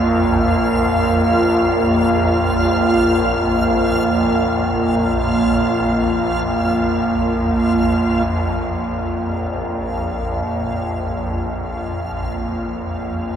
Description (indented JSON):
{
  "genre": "ambient",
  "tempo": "free time",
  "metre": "none",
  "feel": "none",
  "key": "unclear",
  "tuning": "A4 = 435 Hz",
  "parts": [
    { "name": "deep dark ambient pad", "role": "sustained chords", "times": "0.0-13.4 s", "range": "Bb3 to C5", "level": "-19 LUFS", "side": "equal", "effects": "chorus, built-in reverb" },
    { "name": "swarming drone", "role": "drone", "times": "0.0-13.4 s", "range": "Bb1 to F2", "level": "-20 LUFS", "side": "equal", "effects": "built-in reverb" },
    { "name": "backwards swelling texture", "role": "texture", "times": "0.0-13.4 s", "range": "F4 to F5", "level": "-23 LUFS", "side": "right 1 dB", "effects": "built-in reverb" }
  ],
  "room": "wet huge ambient reverb, RT60 7.5 s",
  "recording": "none",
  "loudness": "-16 LUFS",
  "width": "side -8 dB against mid",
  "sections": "0.0-8.3 A section; 8.3-13.4 B section",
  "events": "none",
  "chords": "0.0 Bb5",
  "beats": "free time"
}